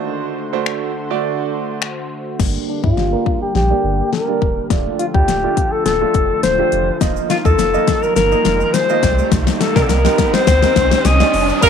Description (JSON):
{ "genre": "dance-pop", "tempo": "104 BPM", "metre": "4/4", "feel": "straight", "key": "G minor", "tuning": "A4 = 440 Hz", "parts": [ { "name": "clear concert grand piano", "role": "accompaniment", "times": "0.0-11.7 s", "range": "A3 to Eb5", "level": "-23 LUFS", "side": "right 15 dB", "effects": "sidechain pumping, low-pass filter" }, { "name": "lush unison pad", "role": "sustained chords", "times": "0.0-11.7 s", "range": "D3 to C5", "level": "-25 LUFS", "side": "right 1 dB", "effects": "chorus, sidechain pumping, low-pass filter" }, { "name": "pop drum kit", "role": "drums", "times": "0.7-11.7 s", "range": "crash cymbal, finger snaps, hi-hat, kick drum, snare drum", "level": "-18 LUFS", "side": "left 5 dB", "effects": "overdrive" }, { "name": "warm sub bass", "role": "bass", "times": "2.4-11.7 s", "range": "D1 to C3", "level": "-19 LUFS", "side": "equal", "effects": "sidechain pumping" }, { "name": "riser", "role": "sound effects", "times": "4.3-11.6 s", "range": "none", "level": "-25 LUFS", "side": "right 3 dB", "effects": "none" }, { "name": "clear alto saxophone", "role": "melody", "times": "2.7-11.6 s", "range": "D4 to Eb5", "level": "-17 LUFS", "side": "left 3 dB", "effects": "low-pass filter" }, { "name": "tube shaker", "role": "percussion", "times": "7.0-11.7 s", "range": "none", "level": "-37 LUFS", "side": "right 20 dB", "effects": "none" }, { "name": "warm horn section", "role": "melody", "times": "11.6-11.7 s", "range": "Bb4", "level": "-9 LUFS", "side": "right 6 dB", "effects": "sidechain pumping" } ], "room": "light reverb, studio ambience", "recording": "1960s-style stereo", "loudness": "-14 LUFS", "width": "side -7 dB against mid", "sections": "0.0-2.4 A section; 2.4-11.6 B section", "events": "break 0.1-2.4; build-up 2.4-11.6; drum fill 2.4-11.6; filter sweep 2.4-11.6; riser 4.3-11.6", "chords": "0.0 D7; 2.4 Gm; 4.7 Dm; 7.0 Ebsus2; 9.0 Cmadd9" }